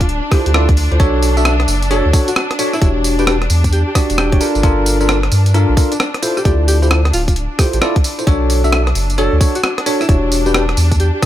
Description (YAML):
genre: UK garage, two-step garage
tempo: 132 BPM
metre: 4/4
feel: swing 64% on 16ths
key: B minor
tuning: A4 = 440 Hz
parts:
  - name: breathy alto saxophone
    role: melody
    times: 0.0-11.2 s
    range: D4 to A4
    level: -24 LUFS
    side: equal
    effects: tape echo
  - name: muted studio violin section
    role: sustained chords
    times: 0.0-11.3 s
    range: D4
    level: -24 LUFS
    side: left 1 dB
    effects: sidechain pumping
  - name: soft dub sub bass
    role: bass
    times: 0.0-11.1 s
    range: D1 to G2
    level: -15 LUFS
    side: equal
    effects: tube saturation, sidechain pumping
  - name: breakbeat sampler-style drum kit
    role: drums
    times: 0.0-11.3 s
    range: hi-hat, rim click, tambourine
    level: -20 LUFS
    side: equal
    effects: none
  - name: electronic kick drum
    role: drums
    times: 0.0-11.3 s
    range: none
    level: -13 LUFS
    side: equal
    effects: none
  - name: bell-like tine electric piano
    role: stabs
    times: 0.3-11.3 s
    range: D4 to E5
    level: -18 LUFS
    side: left 1 dB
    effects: wide subtle chorus, tape echo
room: little or no reverb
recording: none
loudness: -12 LUFS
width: side -12 dB against mid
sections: 0.0-11.3 A section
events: none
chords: 0.0 Dm7; 1.0 Bm7; 2.8 Em7; 4.4 Gm7; 6.2 Dm7; 8.3 Bm7; 10.1 Em7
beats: 0.09 0.54 | 1.00 1.45 1.91 2.36 | 2.82 3.27 3.73 4.18 | 4.63 5.09 5.54 6.00 | 6.45 6.91 7.36 7.82 | 8.27 8.72 9.18 9.63 | 10.09 10.54 11.00